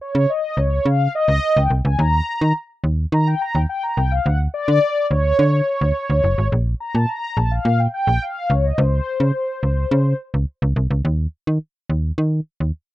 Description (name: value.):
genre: early-eighties boogie funk.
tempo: 106 BPM.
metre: 4/4.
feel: straight.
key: unclear.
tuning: A4 = 439 Hz.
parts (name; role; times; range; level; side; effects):
mellow synth brass; accompaniment; 0.0-10.2 s; C5 to Bb5; -20 LUFS; left 1 dB; chorus.
slap-like FM bass; bass; 0.1-12.7 s; F#1 to Eb3; -17 LUFS; equal; none.
room: little or no reverb.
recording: rough home demo mix.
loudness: -17 LUFS.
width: side -16 dB against mid.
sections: 0.0-11.0 A section; 11.0-12.9 B section.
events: analog polysynth solo 0.0-11.0.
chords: 0.0 Dbadd9; 2.0 Eb5; 4.3 Dmaj7(no3); 6.5 Gm9/Bb; 8.5 N.C..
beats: 0.29 0.86 1.43 | 1.99 2.56 3.12 3.69 | 4.26 4.82 5.39 5.95 | 6.52 7.09 7.65 8.22 | 8.78 9.35 9.92 10.48 | 11.05 11.61 12.18.